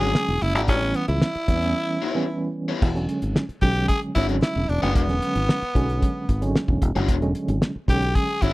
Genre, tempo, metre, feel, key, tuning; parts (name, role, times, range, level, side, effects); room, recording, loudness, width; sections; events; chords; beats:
funk; 113 BPM; 4/4; straight; E mixolydian; A4 = 440 Hz
breathy tenor saxophone; melody; 0.0-8.5 s; B3 to G#4; -26 LUFS; equal
raw garage guitar; accompaniment; 0.0-8.5 s; G#3 to D5; -28 LUFS; left 6 dB; overdrive
tine electric piano; stabs; 0.0-8.4 s; D3 to C#4; -27 LUFS; right 2 dB; medium tremolo
fingered electric bass; bass; 0.0-8.5 s; E1 to E2; -24 LUFS; equal
cloth-damped thuddy drum kit; drums; 0.0-8.5 s; crash cymbal, hi-hat, kick drum, snare drum; -22 LUFS; equal
small room ambience; dry, close 1970s-style studio recording; -20 LUFS; side -19 dB against mid
0.0-2.8 A section; 2.8-8.5 B section
break 1.8-2.8
0.0 E13; 0.7 A9 (rootless); 2.8 E13
0.15 | 0.69 1.22 1.76 2.29 | 2.82 3.36 3.89 4.42 | 4.96 5.49 6.02 6.55 | 7.09 7.62 8.15